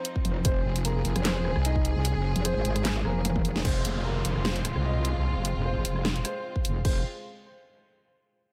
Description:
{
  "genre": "heavy wobble dubstep",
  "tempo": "150 BPM",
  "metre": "4/4",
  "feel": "swing 54% on 16ths, half-time",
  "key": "F minor",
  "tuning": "A4 = 440 Hz",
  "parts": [
    { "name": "dark grand piano", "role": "melody", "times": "0.0-7.0 s", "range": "Bb3 to Eb5", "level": "-38 LUFS", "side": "equal", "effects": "digital delay" },
    { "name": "warm studio string section", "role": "sustained chords", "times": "0.0-7.0 s", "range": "F3 to Ab4", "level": "-38 LUFS", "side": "equal", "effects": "sidechain pumping" },
    { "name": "dubstep drum kit", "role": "drums", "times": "0.0-6.9 s", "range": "crash cymbal, handclaps, hi-hat, rim click, snare drum, toms", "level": "-34 LUFS", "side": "equal", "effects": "none" },
    { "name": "metallic wobble bass", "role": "bass", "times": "0.2-3.6 s", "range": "F1 to Ab1", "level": "-30 LUFS", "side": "equal", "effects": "chorus, overdrive" },
    { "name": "electronic kick drum", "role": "drums", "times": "0.2-3.7, 6.6-6.9 s", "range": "none", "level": "-30 LUFS", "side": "equal", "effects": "none" },
    { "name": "wobble bass", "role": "bass", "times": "0.4-7.0 s", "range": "F1 to C2", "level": "-30 LUFS", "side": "equal", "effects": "chorus, overdrive" },
    { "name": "downlifter", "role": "sound effects", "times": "3.6-6.8 s", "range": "none", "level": "-41 LUFS", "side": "equal", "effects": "none" }
  ],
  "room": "digital ambience",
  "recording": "none",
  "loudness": "-27 LUFS",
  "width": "mono",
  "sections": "0.0-3.6 A section; 3.6-6.8 B section; 6.8-8.4 C section",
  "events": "drop 0.0-3.6; drum fill 3.2-3.6; band accent 3.5; filter sweep on wobble bass 3.6-6.8",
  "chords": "0.0 F5; 3.6 Fm",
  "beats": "0.05 | 0.45 0.85 1.25 1.65 | 2.05 2.45 2.85 3.25 | 3.65 4.05 4.45 4.85 | 5.25 5.65 6.05 6.45 | 6.85"
}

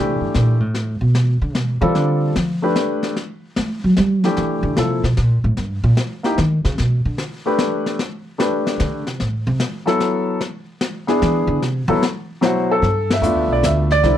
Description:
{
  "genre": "jazz piano trio",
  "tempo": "149 BPM",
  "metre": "3/4",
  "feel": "swing 67% on 8ths",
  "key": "G mixolydian",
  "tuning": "A4 = 440 Hz",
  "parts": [
    { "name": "warm grand piano", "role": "melody", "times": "0.0-14.2 s", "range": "B2 to E5", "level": "-18 LUFS", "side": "left 1 dB", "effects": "none" },
    { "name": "upright bass", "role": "bass", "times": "0.0-14.2 s", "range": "B1 to A3", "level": "-18 LUFS", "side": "equal", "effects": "none" },
    { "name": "jazz brush drum kit", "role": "drums", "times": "0.3-14.2 s", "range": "brushed snare drum, hi-hat, kick drum, ride cymbal, snare drum", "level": "-25 LUFS", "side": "left 2 dB", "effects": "none" }
  ],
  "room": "light reverb",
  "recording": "dark, warm production",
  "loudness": "-16 LUFS",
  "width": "side -11 dB against mid",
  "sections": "0.0-12.8 A section; 12.8-14.2 B section",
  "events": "upright bass solo 0.0-12.8; band accent 13.0",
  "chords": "0.0 C9; 0.7 G9; 3.2 C9; 5.6 C#dim7(no3); 6.8 Gadd9; 8.0 Am7; 9.2 Am69; 10.4 N.C.; 11.2 E7; 11.6 Am69 (rootless); 12.8 G9",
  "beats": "0.34 | 0.74 1.15 1.55 | 1.95 2.35 2.75 | 3.16 3.56 3.96 | 4.37 4.77 5.17 | 5.57 5.97 6.38 | 6.78 7.18 7.59 | 7.99 8.39 8.79 | 9.20 9.60 10.00 | 10.41 10.81 11.21 | 11.62 12.02 12.42 | 12.83 13.23 13.63 | 14.04"
}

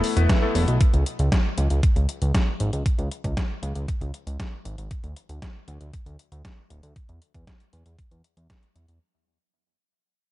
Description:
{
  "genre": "italo disco",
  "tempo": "117 BPM",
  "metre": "4/4",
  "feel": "straight",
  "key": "unclear",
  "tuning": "A4 = 442 Hz",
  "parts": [
    { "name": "bright electric grand piano", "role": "stabs", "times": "0.0-0.8 s", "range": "A3 to B4", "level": "-27 LUFS", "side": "left 3 dB", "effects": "analog chorus, ping-pong delay" },
    { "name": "detuned 8-bit digital drum machine", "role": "drums", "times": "0.0-9.0 s", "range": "hi-hat, snare drum", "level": "-30 LUFS", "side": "equal", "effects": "overdrive" },
    { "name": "fat analog bass", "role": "bass", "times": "0.2-9.0 s", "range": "D1 to E2", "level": "-24 LUFS", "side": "equal", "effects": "none" },
    { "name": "electronic kick drum", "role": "drums", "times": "0.3-8.6 s", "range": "none", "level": "-23 LUFS", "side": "equal", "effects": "overdrive" }
  ],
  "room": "light reverb, digital ambience",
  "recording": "nothing above 10.8 kHz",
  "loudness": "-21 LUFS",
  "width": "side -16 dB against mid",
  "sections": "0.0-9.0 A section",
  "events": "fade-out 0.0-9.0",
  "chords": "0.0 Esus4; 0.8 C#5; 4.9 N.C.",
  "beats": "0.29 | 0.81 1.32 1.83 2.34 | 2.86 3.37 3.88 4.39 | 4.91 5.42 5.93 6.45 | 6.96 7.47 7.99 8.50"
}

